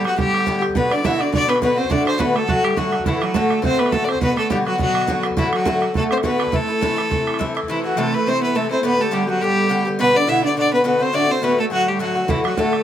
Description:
celtic folk, Celtic reel; 208 BPM; 4/4; swing 54% on 8ths; A4 = 440 Hz
bright fiddle; melody; 0.0-12.8 s; E4 to E5; -21 LUFS; left 1 dB
bright cello; second line; 0.0-12.8 s; E3 to E4; -23 LUFS; right 5 dB
bright reedy baroque flute; second line; 0.0-12.8 s; E4 to E5; -27 LUFS; left 6 dB
Irish bouzouki; accompaniment; 0.0-12.8 s; A2 to G4; -22 LUFS; left 3 dB
bodhran; percussion; 0.1-7.7, 12.3-12.8 s; -24 LUFS; right 4 dB
light reverb; close, detailed microphones; -16 LUFS; side -10 dB against mid
0.0-7.7 A section; 7.7-12.8 A section
0.0 Gadd9; 0.8 Bm; 1.9 D; 4.2 Bm; 5.4 D; 6.5 Am; 8.8 Gadd9; 10.0 Bm; 11.1 D
0.19 0.47 | 0.76 1.05 1.33 1.62 | 1.91 2.20 2.48 2.77 | 3.06 3.35 3.64 3.93 | 4.21 4.50 4.79 5.08 | 5.37 5.66 5.95 6.24 | 6.53 6.82 7.11 7.40 | 7.69 7.98 8.27 8.55 | 8.84 9.13 9.42 9.70 | 9.99 10.28 10.56 10.85 | 11.14 11.43 11.71 12.00 | 12.28 12.57

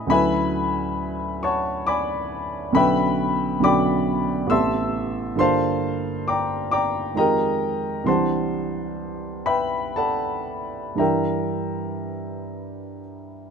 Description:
classical, impressionist solo piano; 56-70 BPM; 3/4; rubato; A4 = 440 Hz
warm baby grand piano; solo; 0.0-13.5 s; A1 to E6; -21 LUFS; equal
light reverb; close, detailed microphones; -20 LUFS; side -6 dB against mid
0.0-13.5 A section
0.1 Dmaj9; 2.7 Bm9; 4.5 Am9; 5.4 Gm9; 7.2 Fm9; 8.1 Cadd9; 11.0 Gm6
| 0.11 1.00 1.88 | 2.74 3.62 4.50 | 5.39 6.27 7.15 | 8.06 9.00 9.96 | 10.99 12.03 13.04

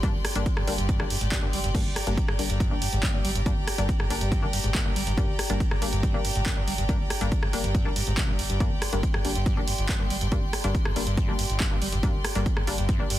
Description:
driving peak-time techno; 140 BPM; 4/4; straight; G minor; A4 = 436 Hz
screaming distorted acid line; riff; 0.0-13.2 s; G1 to G3; -32 LUFS; equal; distortion, wide subtle chorus, sidechain pumping, tape echo
filtered dub chord stab; stabs; 0.0-13.1 s; G3 to D4; -34 LUFS; left 3 dB; chorus, cassette tape, sidechain pumping, tape echo
saturated sub bass; bass; 0.0-13.1 s; G1; -30 LUFS; equal; overdrive, sidechain pumping, low-pass filter
electronic kick drum; drums; 0.0-13.0 s; -27 LUFS; equal; overdrive
punchy analog drum machine; drums; 0.0-13.2 s; crash cymbal, handclaps, hi-hat, rim click; -31 LUFS; right 1 dB; overdrive
rich chamber string section; texture; 0.0-13.2 s; G4 to C6; -34 LUFS; equal; sidechain pumping
digital ambience; dense, heavily limited modern master; -23 LUFS; side -14 dB against mid
0.0-13.2 A section
0.0 Gm
| 0.03 0.46 0.89 1.32 | 1.75 2.18 2.60 3.03 | 3.46 3.89 4.32 4.75 | 5.18 5.60 6.03 6.46 | 6.89 7.32 7.75 8.18 | 8.60 9.03 9.46 9.89 | 10.32 10.75 11.18 11.60 | 12.03 12.46 12.89

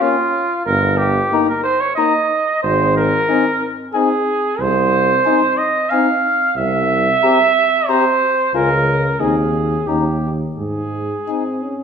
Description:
classical, brass quintet; 91 BPM; 3/4; straight; Ab major; A4 = 440 Hz
mellow trumpet; melody; 0.0-11.4 s; F5 to Bb5; -24 LUFS; left 10 dB
clear flugelhorn; second line; 0.0-11.8 s; F4 to F5; -16 LUFS; right 3 dB
clear French horn; accompaniment; 0.0-11.4 s; Db4 to G4; -23 LUFS; left 8 dB
mellow trombone; accompaniment; 0.0-11.8 s; Ab3 to Db4; -25 LUFS; left 1 dB
clear tuba; bass; 0.7-11.2 s; G1 to Ab2; -20 LUFS; right 1 dB
wet recital hall reverb, RT60 1.6 s; recorded in a church or concert hall; -14 LUFS; side -6 dB against mid
0.0-11.8 A section
0.0 Bbm; 0.7 Eb/G; 2.6 Ab; 4.6 Ab/C (rootless); 6.6 C; 8.5 Db; 9.2 Ab/Eb; 9.9 Eb7; 10.6 Ab
0.00 | 0.66 1.32 1.97 | 2.63 3.29 3.94 | 4.59 5.25 5.91 | 6.56 7.22 7.89 | 8.54 9.21 9.88 | 10.58 11.27

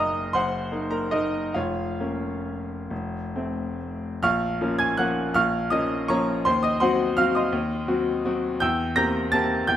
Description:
classical, piano waltz; 129-179 BPM; 3/4; rubato; Bb minor; A4 = 437 Hz
bright grand piano; solo; 0.0-9.8 s; F1 to Bb6; -22 LUFS; equal
moderate large studio reverb, RT60 1.2 s; -22 LUFS; side -11 dB against mid
0.0-4.2 A section; 4.2-9.8 B section
0.0 Ebm/Gb; 1.5 Bbm/F; 2.9 F; 4.2 Bbm; 6.5 Cdim/Eb; 8.6 C7/E
| 0.34 0.71 1.11 | 1.55 2.00 2.46 | 2.90 3.35 3.79 | 4.21 4.59 4.97 | 5.34 5.70 6.08 | 6.45 6.81 7.18 | 7.53 7.88 8.24 | 8.60 8.95 9.31 | 9.66

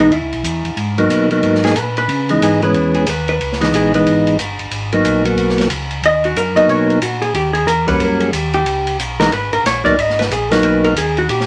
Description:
soul jazz organ trio; 183 BPM; 4/4; swing 62% on 8ths; G# minor; A4 = 437 Hz
percussive tonewheel organ; melody; 0.0-10.9 s; E3 to F#4; -16 LUFS; equal; slow rotary speaker
vintage hollow-body jazz guitar; accompaniment; 0.0-11.5 s; D#4 to D#5; -19 LUFS; equal
mellow tonewheel organ; bass; 0.0-11.5 s; G1 to C#3; -25 LUFS; equal; chorus vibrato, slow rotary speaker
open jazz drum kit; drums; 0.0-11.5 s; hi-hat, kick drum, ride cymbal, snare drum; -25 LUFS; equal
moderate studio reverb, RT60 0.5 s; -16 LUFS; mono
0.0-11.5 A section
hollow-body jazz guitar solo 0.0-11.5
0.0 C#m9; 0.8 G#m9; 2.1 C#m9; 4.7 G#m9; 7.3 D#7#9; 8.7 C#7sus2; 10.0 G#m9
0.12 0.45 | 0.78 1.11 1.44 1.76 | 2.09 2.42 2.75 3.08 | 3.41 3.74 4.07 4.39 | 4.72 5.05 5.38 5.71 | 6.04 6.36 6.69 7.02 | 7.35 7.68 8.01 8.34 | 8.66 8.99 9.32 9.65 | 9.98 10.31 10.64 10.97 | 11.29

